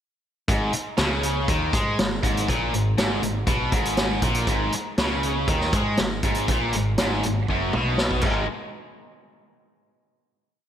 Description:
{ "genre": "classic rock", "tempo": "120 BPM", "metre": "4/4", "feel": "straight", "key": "G# minor", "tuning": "A4 = 440 Hz", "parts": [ { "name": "biting overdriven guitar", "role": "riff", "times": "0.5-8.5 s", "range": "F#2 to G#3", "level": "-24 LUFS", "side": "equal", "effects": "none" }, { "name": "growling picked electric bass", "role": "bass", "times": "0.5-8.5 s", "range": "F#1 to G#2", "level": "-29 LUFS", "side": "equal", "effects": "overdrive" }, { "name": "vintage drum kit", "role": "drums", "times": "0.5-8.3 s", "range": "crash cymbal, hi-hat, kick drum, snare drum, toms", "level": "-25 LUFS", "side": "equal", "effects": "none" } ], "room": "moderate lush hall reverb, RT60 2.4 s", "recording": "big arena sound", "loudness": "-21 LUFS", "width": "side -10 dB against mid", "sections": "0.5-8.5 riff; 8.5-10.5 final hit", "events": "drum fill 7.5-8.5", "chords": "0.5 G#m; 8.2 G#5; 8.5 N.C." }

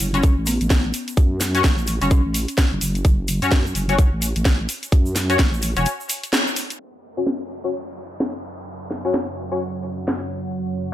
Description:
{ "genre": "bass house", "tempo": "128 BPM", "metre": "4/4", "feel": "swing 60% on 16ths", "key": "F# minor", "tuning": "A4 = 439 Hz", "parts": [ { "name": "vowel-sweep wobble bass", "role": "bass", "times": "0.0-5.9 s", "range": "E1 to F#2", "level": "-23 LUFS", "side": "equal", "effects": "chorus, tube saturation, sidechain pumping" }, { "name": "garage drum kit", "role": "drums", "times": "0.0-10.2 s", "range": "hi-hat, snare drum", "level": "-24 LUFS", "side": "equal", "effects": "none" }, { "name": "egg shaker", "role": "percussion", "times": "0.0-6.8 s", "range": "none", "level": "-31 LUFS", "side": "right 2 dB", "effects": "none" }, { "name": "folk marimba with medium mallets", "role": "melody", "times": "0.1-2.2 s", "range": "B3 to C#4", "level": "-27 LUFS", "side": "left 1 dB", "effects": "tape echo" }, { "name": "band-passed chord stab", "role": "stabs", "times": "0.1-9.6 s", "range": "C#4 to C#5", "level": "-25 LUFS", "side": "left 4 dB", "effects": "ensemble chorus, sidechain pumping, tape echo" }, { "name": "electronic kick drum", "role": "drums", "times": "0.2-5.5 s", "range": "none", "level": "-16 LUFS", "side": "equal", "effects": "none" }, { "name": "dark analog pad", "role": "sustained chords", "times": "8.5-10.9 s", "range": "F#3 to F#5", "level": "-30 LUFS", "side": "right 2 dB", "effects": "chorus, sidechain pumping" }, { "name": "downlifter", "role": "sound effects", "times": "6.8-10.5 s", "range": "none", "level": "-38 LUFS", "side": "equal", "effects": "none" } ], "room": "digital ambience", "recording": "low-pass filter", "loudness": "-18 LUFS", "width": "side -12 dB against mid", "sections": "0.0-6.8 A section; 6.8-10.9 B section", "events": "break 5.9-6.8; band accent 6.3; filter sweep on synth stab 6.8-10.9; filter sweep on analog synth pad 6.8-10.9; filter sweep 6.8-10.9", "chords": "0.0 F#5" }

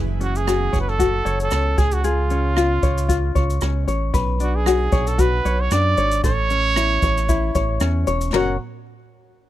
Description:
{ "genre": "acoustic pop", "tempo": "114 BPM", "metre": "4/4", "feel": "swing 55% on 16ths", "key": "F# minor", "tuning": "A4 = 440 Hz", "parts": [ { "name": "round analog bass", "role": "bass", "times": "0.0-8.6 s", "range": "E1 to F#2", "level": "-21 LUFS", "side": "equal", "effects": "none" }, { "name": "breathy trumpet", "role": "melody", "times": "0.2-8.6 s", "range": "E#4 to F#5", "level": "-23 LUFS", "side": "right 4 dB", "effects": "none" }, { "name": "tenor ukulele", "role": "accompaniment", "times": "0.2-8.6 s", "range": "C#4 to C#5", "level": "-23 LUFS", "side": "left 6 dB", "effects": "none" }, { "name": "jazz brush drum kit", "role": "drums", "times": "0.2-8.5 s", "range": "kick drum, ride cymbal, rim click, shaker, snare drum, toms", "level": "-24 LUFS", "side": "right 1 dB", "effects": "none" } ], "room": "little or no reverb", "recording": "close, detailed microphones", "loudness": "-17 LUFS", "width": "side -13 dB against mid", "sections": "0.0-8.3 A section; 8.3-9.5 B section", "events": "none", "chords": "0.0 F#m; 1.8 C#; 4.1 Bmadd9; 6.2 A; 8.3 F#" }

